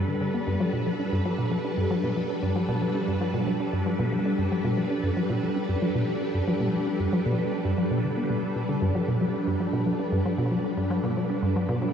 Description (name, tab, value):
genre	ambient, sequencer-driven space music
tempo	115 BPM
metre	4/4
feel	straight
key	G major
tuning	A4 = 435 Hz
part	phased string machine	sustained chords	0.0-11.9 s	G3 to B4	-28 LUFS	equal	ensemble chorus, phaser
part	resonant blip pluck	riff	0.1-11.9 s	G2 to D4	-26 LUFS	equal	chorus, cassette tape, tape echo
room	wet shimmer reverb, RT60 6.6 s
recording	dark, warm production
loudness	-24 LUFS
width	side -8 dB against mid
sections	0.0-11.9 A section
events	filter sweep on synth arpeggio sound 0.0-11.9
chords	0.0 Gadd9